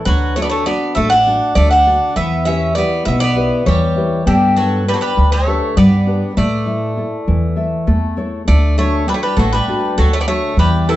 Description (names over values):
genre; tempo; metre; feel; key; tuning
greek folk, Greek bouzouki band; 200 BPM (eighths); 7/8; straight; D major; A4 = 440 Hz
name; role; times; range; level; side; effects
Greek bouzouki; melody; 0.0-11.0 s; G4 to F#5; -18 LUFS; equal; none
Greek bouzouki; second line; 0.0-11.0 s; D3 to D4; -23 LUFS; right 2 dB; none
nylon-string guitar; accompaniment; 0.0-11.0 s; B2 to G5; -18 LUFS; left 2 dB; none
upright bass; bass; 0.1-11.0 s; A1 to A2; -16 LUFS; equal; none
room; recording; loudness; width
wet small room reverb, RT60 0.5 s; heard from further back in the room, nothing above 8.0 kHz; -13 LUFS; side -14 dB against mid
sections
0.0-8.5 A section; 8.5-11.0 B section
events
none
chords
0.1 D; 2.2 Em; 4.3 G; 6.4 A5; 8.5 D